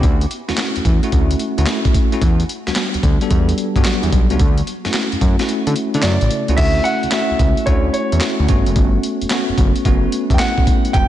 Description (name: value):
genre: R&B, new jack swing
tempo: 110 BPM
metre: 4/4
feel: swing 66% on 16ths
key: unclear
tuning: A4 = 436 Hz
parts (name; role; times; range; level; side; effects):
- bell-like tine electric piano; accompaniment; 0.0-11.1 s; C#3 to A4; -20 LUFS; left 1 dB; fast stereo tremolo, slapback echo
- fat analog bass; bass; 0.0-11.1 s; E1 to D3; -18 LUFS; equal; none
- breakbeat sampler-style drum kit; drums; 0.0-11.1 s; crash cymbal, handclaps, hi-hat, kick drum, snare drum; -17 LUFS; equal; none
- warm concert grand piano; melody; 6.0-11.1 s; C#5 to G5; -21 LUFS; right 2 dB; slapback echo
room: moderate lush hall reverb, RT60 2.2 s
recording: big arena sound, nothing above 10.7 kHz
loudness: -14 LUFS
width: side -12 dB against mid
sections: 0.0-6.6 A section; 6.6-11.1 B section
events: kick muted 5.5-6.6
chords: 0.0 Dmaj7; 2.2 Em7; 4.4 Dmaj7; 6.6 Dmaj9; 8.5 Gmaj9#11